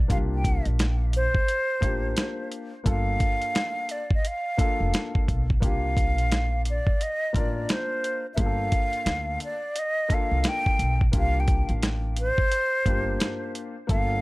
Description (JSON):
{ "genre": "hip hop, jazz-hop", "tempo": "87 BPM", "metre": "4/4", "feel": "swing 63% on 16ths", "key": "unclear", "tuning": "A4 = 440 Hz", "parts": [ { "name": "upright bass", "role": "bass", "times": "0.0-14.2 s", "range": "F1 to D2", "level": "-26 LUFS", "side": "equal", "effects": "none" }, { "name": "breathy mellow silver concert flute", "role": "melody", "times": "0.1-14.2 s", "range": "C5 to G5", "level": "-28 LUFS", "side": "equal", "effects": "analog delay" }, { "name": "warm upright piano", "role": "accompaniment", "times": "0.1-14.2 s", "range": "Bb3 to Bb4", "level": "-34 LUFS", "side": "left 4 dB", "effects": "none" }, { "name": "dusty soul sampler-style drum kit", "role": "drums", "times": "0.1-14.1 s", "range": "hi-hat, kick drum, snare drum", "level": "-25 LUFS", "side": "equal", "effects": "none" } ], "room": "light reverb", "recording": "none", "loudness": "-23 LUFS", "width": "side -21 dB against mid", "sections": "0.0-14.2 A section", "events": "none", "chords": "0.1 C7sus4; 2.9 Gm9 (rootless); 5.6 C7sus4; 8.4 Gm9 (rootless); 11.1 C7sus4", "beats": "| 0.10 0.79 1.48 2.17 | 2.86 3.55 4.24 4.93 | 5.62 6.31 7.00 7.69 | 8.38 9.06 9.76 10.45 | 11.13 11.82 12.51 13.20 | 13.89" }